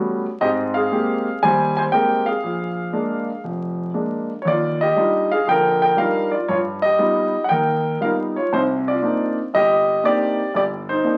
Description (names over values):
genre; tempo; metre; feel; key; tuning
solo jazz; 118 BPM; 4/4; swing 67% on 8ths; C minor; A4 = 440 Hz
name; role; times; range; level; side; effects
warm grand piano; solo; 0.0-11.2 s; F1 to Ab5; -20 LUFS; equal; none
room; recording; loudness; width
moderate large studio reverb, RT60 0.9 s; very old 78 rpm record, vinyl crackle; -20 LUFS; mono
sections
0.0-11.2 A section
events
none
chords
0.4 Abmaj9; 2.4 Bb7; 4.5 Ebmaj9; 6.5 G7alt; 8.5 Cm9